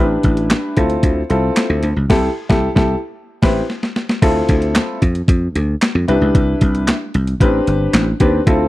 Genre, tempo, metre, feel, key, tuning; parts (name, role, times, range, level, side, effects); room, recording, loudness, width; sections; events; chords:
early-eighties boogie funk; 113 BPM; 4/4; straight; D dorian; A4 = 441 Hz
warm concert grand piano; accompaniment; 0.0-8.7 s; C4 to B4; -18 LUFS; left 1 dB
dry thumbed slap bass; bass; 0.0-8.7 s; G1 to F2; -17 LUFS; equal
crisp 8-bit digital drum machine; drums; 0.2-8.6 s; crash cymbal, handclaps, hi-hat, kick drum, snare drum; -16 LUFS; equal; overdrive
digital ambience; dry, close 1970s-style studio recording; -13 LUFS; side -17 dB against mid
0.0-4.2 A section; 4.2-8.7 B section
band accent 2.1-4.2; drum fill 3.2-4.2
0.0 A7sus4; 0.8 Dm9; 2.1 C6; 3.2 Am9; 4.2 Dm7; 6.1 Cmaj7; 7.4 Am11